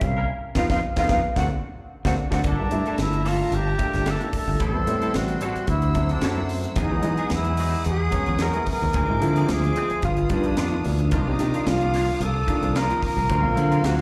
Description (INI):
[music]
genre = electric jazz fusion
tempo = 111 BPM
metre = 4/4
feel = swing 53% on 16ths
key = unclear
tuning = A4 = 437 Hz
[part]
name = silver concert flute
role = melody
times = 0.0-14.0 s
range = D4 to F#5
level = -29 LUFS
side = equal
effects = slapback echo
[part]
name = warm grand piano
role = accompaniment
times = 0.0-14.0 s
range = Eb3 to D#5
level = -31 LUFS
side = equal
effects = slapback echo
[part]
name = direct-recorded clean electric guitar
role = stabs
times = 0.0-14.0 s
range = Eb3 to Bb4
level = -38 LUFS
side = equal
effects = ensemble chorus, slapback echo
[part]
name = modern bright fingered electric bass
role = bass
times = 0.0-14.0 s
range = G1 to E3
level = -26 LUFS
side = equal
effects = none
[part]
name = crisp fusion drum kit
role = drums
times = 0.0-14.0 s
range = hi-hat, kick drum, snare drum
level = -31 LUFS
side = equal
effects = none
[part]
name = clear studio string section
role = sustained chords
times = 2.5-14.0 s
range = Bb3 to E6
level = -39 LUFS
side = equal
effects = none
[sound]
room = light reverb, small room ambience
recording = live gig heard through the venue's PA, club reverb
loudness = -23 LUFS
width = mono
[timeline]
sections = 0.0-2.4 A section; 2.4-14.0 B section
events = band accent 0.3-2.4; drum fill 1.9-2.4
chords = 0.3 Ebsus2/F; 1.4 Daug7; 2.4 Gm69; 4.6 Am7; 5.7 D9; 6.8 Emaj9; 8.9 Dm7b5; 10.0 G7b13; 11.1 Cm11; 13.3 D7alt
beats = | 0.28 0.82 1.36 1.90 | 2.44 2.98 3.52 4.07 | 4.61 5.15 5.69 6.23 | 6.78 7.32 7.86 8.40 | 8.95 9.49 10.03 10.58 | 11.12 11.66 12.21 12.75 | 13.29 13.84